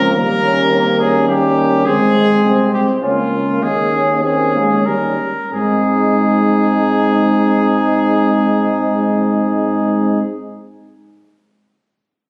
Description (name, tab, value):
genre	classical, brass quintet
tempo	90-107 BPM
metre	3/4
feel	rubato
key	Ab major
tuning	A4 = 440 Hz
part	bright trumpet	melody	0.0-10.2 s	F4 to Bb4	-20 LUFS	equal	none
part	mellow flugelhorn	second line	0.0-10.2 s	Bb3 to Eb4	-22 LUFS	equal	none
part	clear trombone	accompaniment	0.0-10.2 s	G3 to Db4	-24 LUFS	equal	none
part	dark French horn	accompaniment	0.0-10.2 s	F3 to C4	-22 LUFS	equal	none
part	mellow tuba	bass	0.0-10.2 s	Ab1 to Ab2	-22 LUFS	equal	none
room	wet recital hall reverb, RT60 1.5 s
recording	recorded on a phone in the room, studio reverb, compression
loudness	-15 LUFS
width	mono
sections	0.0-5.5 A section; 5.5-9.5 B section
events	slowing down 1.0-5.5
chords	0.1 Eb; 1.9 Ab; 3.0 Bbm/Db; 3.6 Eb7sus4; 4.9 Eb7; 5.5 Ab